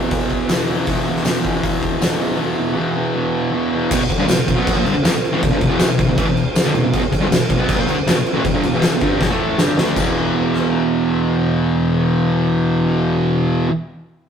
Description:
garage rock duo or trio; 159 BPM; 4/4; straight; A4 = 440 Hz
fuzz guitar; riff; 0.0-13.7 s; E2 to D4; -17 LUFS; equal; distortion
oversized low-tuned drum kit; drums; 0.1-10.6 s; crash cymbal, hi-hat, kick drum, rim click, snare drum; -19 LUFS; equal
tambourine; percussion; 0.5-10.1 s; -34 LUFS; left 4 dB
moderate stone room reverb, RT60 1.1 s; rough rehearsal-room recording, tube saturation; -15 LUFS; side -8 dB against mid
0.0-3.9 A section; 3.9-10.0 B section; 10.0-13.0 C section
drum fill 9.2-10.0
0.0 E5

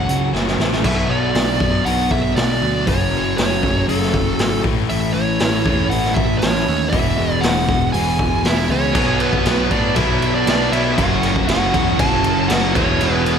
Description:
classic rock; 118 BPM; 4/4; straight; A4 = 439 Hz
fuzz lead guitar; melody; 0.0-13.4 s; A4 to A5; -22 LUFS; right 2 dB; distortion, slapback echo
crunchy overdriven guitar; riff; 0.0-13.4 s; E2 to C#4; -23 LUFS; left 11 dB; slapback echo
raw garage guitar; riff; 0.0-13.4 s; E2 to E4; -24 LUFS; right 12 dB; overdrive, slapback echo
fuzz picked electric bass; bass; 0.0-13.4 s; E1 to A2; -23 LUFS; equal; overdrive
raw garage drum kit; drums; 0.1-13.4 s; crash cymbal, hi-hat, kick drum, snare drum; -20 LUFS; equal
nasal lead guitar with a parked wah; second line; 8.5-13.4 s; B3 to A4; -25 LUFS; right 4 dB; overdrive, slapback echo
distorted electric guitar; riff; 8.9-13.4 s; E2 to B3; -24 LUFS; left 1 dB; overdrive, slapback echo
moderate lush hall reverb, RT60 1.9 s, studio ambience; big arena sound; -15 LUFS; side -7 dB against mid
0.8-8.9 A section; 8.9-13.4 B section
drum fill 0.3-0.8
0.0 F#m; 0.8 Bm; 2.9 F#m; 4.6 A; 6.9 E; 8.9 B5; 11.0 F#m; 12.8 E5

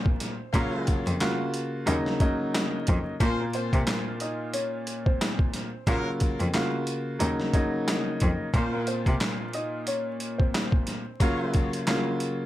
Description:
hip hop, boom-bap hip-hop; 90 BPM; 4/4; swing 56% on 16ths; Bb minor; A4 = 440 Hz
warm upright piano; melody; 0.0-11.2 s; Bb3 to Eb5; -34 LUFS; left 1 dB; ping-pong delay
clear upright piano; accompaniment; 0.0-12.5 s; Bb2 to Gb4; -29 LUFS; equal; cassette tape
boom bap sampler-style drum kit; drums; 0.1-12.4 s; handclaps, hi-hat, kick drum, snare drum; -26 LUFS; equal
warm horn section; stabs; 0.5-11.6 s; F3 to Db5; -37 LUFS; left 2 dB; ping-pong delay
bright cello; bass; 0.5-9.1 s; Eb2 to C3; -28 LUFS; equal
little or no reverb; vinyl crackle; -24 LUFS; side -14 dB against mid
0.0-12.5 A section
0.0 Bbsus2; 0.5 Gbmaj7; 1.9 Ebm7; 3.2 Bbmadd9; 5.9 Gbmaj7; 7.2 Ebm7; 8.5 Bbmadd9; 11.2 Gbmaj7

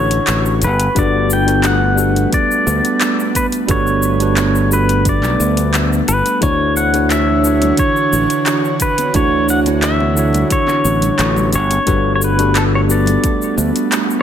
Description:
sunset chillout; 88 BPM; 4/4; straight; G lydian; A4 = 440 Hz
pedal steel guitar; melody; 0.0-13.5 s; A4 to G5; -18 LUFS; left 1 dB; ping-pong delay
tine electric piano; accompaniment; 0.0-14.2 s; D3 to C#5; -19 LUFS; moving between left 8 dB and right 8 dB; auto-pan, tape echo
airy breathy pad; sustained chords; 0.0-14.2 s; D3 to C#5; -21 LUFS; right 2 dB; chorus, vintage 12-bit sampler grit
modern bright fingered electric bass; bass; 0.0-13.7 s; G1 to D2; -17 LUFS; equal
downlifter; sound effects; 0.0-1.0 s; barely audible
deep house drum kit; drums; 0.1-14.2 s; handclaps, hi-hat, shaker; -21 LUFS; left 1 dB; overdrive
electronic kick drum; drums; 1.0-13.4 s; -20 LUFS; equal; overdrive
congas; percussion; 6.9-13.2 s; -28 LUFS; left 3 dB
moderate concert hall reverb, RT60 2.1 s; -12 LUFS; side -9 dB against mid
0.0-14.2 A section
0.0 Dmaj9; 0.6 Gmaj9; 6.4 Dmaj9; 11.5 Gmaj9

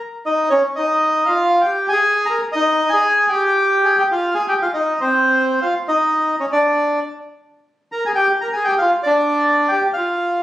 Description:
tango; 117 BPM; 4/4; rubato; A4 = 440 Hz
bandoneon; solo; 0.3-10.4 s; C4 to Bb5; -15 LUFS; equal
moderate large studio reverb, RT60 1.1 s; recorded on a phone in the room, studio reverb; -15 LUFS; side -14 dB against mid
0.0-4.6 A section; 4.6-10.4 B section
0.0 Eb5; 0.5 Dbadd9; 1.5 Fmadd9; 2.5 Ab5/Eb; 3.6 Fmadd9; 4.6 F5; 6.6 Bb; 8.7 G5

